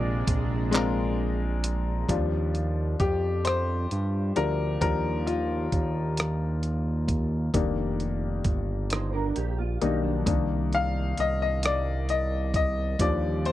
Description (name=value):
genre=slow six-eight R&B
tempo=44 BPM (dotted quarters)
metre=6/8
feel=straight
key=Eb major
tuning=A4 = 440 Hz
part: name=electric guitar at the edge of break-up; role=melody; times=0.0-1.2 s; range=D5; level=-40 LUFS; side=right 1 dB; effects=tape echo
part: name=bright grand piano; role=accompaniment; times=0.0-13.5 s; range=Eb3 to F5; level=-28 LUFS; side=left 4 dB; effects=none
part: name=lush unison pad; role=sustained chords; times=0.0-2.1, 13.0-13.5 s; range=C3 to F4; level=-36 LUFS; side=right 2 dB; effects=chorus
part: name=smooth synth bass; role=bass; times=0.0-13.5 s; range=F1 to G2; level=-28 LUFS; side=right 1 dB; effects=none
part: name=dusty soul sampler-style drum kit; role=drums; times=0.3-13.5 s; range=handclaps, hi-hat, kick drum, rim click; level=-28 LUFS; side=right 1 dB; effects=none
part: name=mellow electric guitar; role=second line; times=8.9-10.5 s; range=F3 to C5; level=-33 LUFS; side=right 6 dB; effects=ensemble chorus
room=little or no reverb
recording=dry, close 1970s-style studio recording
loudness=-24 LUFS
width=side -14 dB against mid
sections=0.0-2.1 A section; 2.1-13.5 B section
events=kick muted 0.7-2.1; grand piano solo 2.1-13.5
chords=0.0 Bb9; 2.1 Ebmaj9; 7.5 F13sus4; 10.3 Cm7; 13.0 Ebmaj9